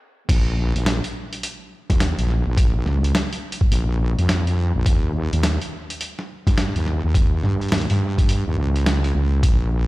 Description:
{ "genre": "glitch hop", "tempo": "105 BPM", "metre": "4/4", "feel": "swing 63% on 16ths", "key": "unclear", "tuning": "A4 = 440 Hz", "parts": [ { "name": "wobble bass", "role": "bass", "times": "0.3-9.9 s", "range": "Bb1 to G2", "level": "-20 LUFS", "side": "equal", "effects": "chorus, high-pass filter" }, { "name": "boom bap sampler-style drum kit", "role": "drums", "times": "0.3-9.6 s", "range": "crash cymbal, hi-hat, snare drum", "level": "-26 LUFS", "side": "equal", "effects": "none" }, { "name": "electronic kick drum", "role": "drums", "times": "0.3-9.6 s", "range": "none", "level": "-18 LUFS", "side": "equal", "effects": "none" } ], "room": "little or no reverb", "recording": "played on a big sound system in a bare room, large studio reverb, high-pass filter", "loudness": "-18 LUFS", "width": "side -19 dB against mid", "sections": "0.3-9.9 A section", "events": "stop 0.0; drop 0.3-9.9", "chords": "none" }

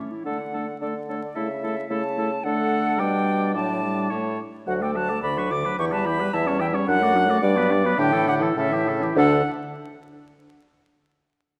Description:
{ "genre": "quick classical-period movement for wind quintet", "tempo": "108 BPM", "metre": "2/4", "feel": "rubato", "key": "D major", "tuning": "A4 = 440 Hz", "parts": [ { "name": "clear clarinet", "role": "accompaniment", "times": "0.0-9.4 s", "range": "B3 to A4", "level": "-31 LUFS", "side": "equal", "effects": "none" }, { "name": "bright silver concert flute", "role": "melody", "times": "0.2-9.5 s", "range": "C#5 to D6", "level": "-29 LUFS", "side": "equal", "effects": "none" }, { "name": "warm oboe", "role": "second line", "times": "0.3-9.4 s", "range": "G4 to F#5", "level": "-32 LUFS", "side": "equal", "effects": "none" }, { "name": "mellow French horn", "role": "accompaniment", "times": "0.3-9.4 s", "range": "C#3 to A3", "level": "-31 LUFS", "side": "equal", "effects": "none" }, { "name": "warm bassoon", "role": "bass", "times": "0.3-9.4 s", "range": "D2 to D3", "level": "-29 LUFS", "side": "equal", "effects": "none" } ], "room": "moderate scoring stage reverb, RT60 2.0 s", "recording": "vinyl crackle", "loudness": "-23 LUFS", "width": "mono", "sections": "0.3-9.2 A section; 9.2-10.3 B section", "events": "slowing down 6.3-9.2", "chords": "0.3 D; 1.4 A/C#; 2.4 D; 3.0 G/B; 3.6 D/A; 4.1 A; 4.7 D; 5.2 Bm/D; 5.8 Em; 6.3 C#dim/E; 6.9 D/F#; 7.4 Gmaj7; 8.0 A7sus4; 8.6 A7; 9.2 D5" }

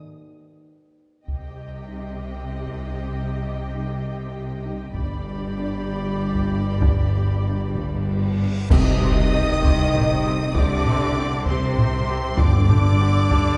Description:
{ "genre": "cinematic, epic orchestral film score", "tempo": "65 BPM (dotted quarters)", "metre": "6/8", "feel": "straight", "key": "C harmonic minor", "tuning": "A4 = 440 Hz", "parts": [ { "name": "timpani", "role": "percussion", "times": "0.0-0.3, 8.7-13.3 s", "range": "G2 to D#3", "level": "-32 LUFS", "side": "equal", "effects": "none" }, { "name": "warm symphonic violin section", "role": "melody", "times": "1.3-13.6 s", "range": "G5 to Eb6", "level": "-34 LUFS", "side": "equal", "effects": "none" }, { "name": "warm symphonic violin section", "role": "second line", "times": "1.3-13.6 s", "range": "C5 to Eb5", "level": "-35 LUFS", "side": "equal", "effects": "none" }, { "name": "warm symphonic viola section", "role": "accompaniment", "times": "1.3-13.4 s", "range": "C4 to G4", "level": "-38 LUFS", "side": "equal", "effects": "none" }, { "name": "clear symphonic double bass section", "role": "bass", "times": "1.3-13.6 s", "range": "G1 to C2", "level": "-28 LUFS", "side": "equal", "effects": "none" }, { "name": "rich symphonic cello section", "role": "bass", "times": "1.3-13.6 s", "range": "G2 to C3", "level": "-28 LUFS", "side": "equal", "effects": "none" }, { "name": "taiko ensemble", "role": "drums", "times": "1.3-13.6 s", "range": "none", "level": "-24 LUFS", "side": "equal", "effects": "none" }, { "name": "dark French horn section", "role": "sustained chords", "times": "1.9-13.6 s", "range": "G3 to Eb4", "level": "-32 LUFS", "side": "equal", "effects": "none" }, { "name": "cymbal swell, clash cymbals and concert bass drum", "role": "percussion", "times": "5.0-9.9 s", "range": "none", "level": "-30 LUFS", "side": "equal", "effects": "none" }, { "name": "reverse cymbal and impact", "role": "sound effects", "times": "8.3-10.6 s", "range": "none", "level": "-38 LUFS", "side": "equal", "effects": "none" }, { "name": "clear trombone section", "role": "sustained chords", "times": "8.7-13.6 s", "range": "C3 to Eb3", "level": "-33 LUFS", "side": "equal", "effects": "none" } ], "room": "wet scoring stage reverb, RT60 1.9 s", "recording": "heard from further back in the room, nothing above 10.6 kHz", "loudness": "-22 LUFS", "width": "mono", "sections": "0.0-1.3 A section; 1.3-8.7 B section; 8.7-13.6 C section", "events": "break 0.0-1.3; drum fill 0.3-1.3; reverse cymbal 8.3-8.7; band accent 8.7-9.3; impact 8.7-10.5", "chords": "0.0 N.C.; 1.3 Cm; 5.0 G; 8.7 Cm; 12.4 G5" }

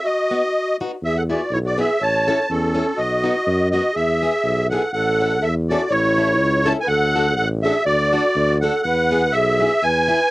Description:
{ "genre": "alpine folk, alpine dance band", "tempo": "123 BPM", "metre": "2/4", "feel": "swing 54% on 8ths", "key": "E major, A major from 4.9 s", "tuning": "A4 = 439 Hz", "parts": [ { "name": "musette accordion", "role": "melody", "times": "0.0-10.3 s", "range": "A4 to A5", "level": "-19 LUFS", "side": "equal", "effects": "cassette tape" }, { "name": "breathy mellow bass recorder", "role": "second line", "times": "0.0-10.3 s", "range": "C#4 to C#5", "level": "-22 LUFS", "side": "right 1 dB", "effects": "none" }, { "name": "picked plugged-in old ladder-braced acoustic guitar", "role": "accompaniment", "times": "0.3-10.2 s", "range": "B3 to A4", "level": "-24 LUFS", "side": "left 2 dB", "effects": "none" }, { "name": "warm tuba", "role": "bass", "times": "1.0-10.1 s", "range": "A1 to F#2", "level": "-23 LUFS", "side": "equal", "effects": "none" } ], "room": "light reverb", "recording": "home recording on cassette", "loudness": "-16 LUFS", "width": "side -18 dB against mid", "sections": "0.0-4.9 A section; 4.9-10.3 B section", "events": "none", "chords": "0.0 B; 1.0 E; 2.0 A; 3.0 B; 4.0 E; 4.9 A; 6.9 D; 8.9 E" }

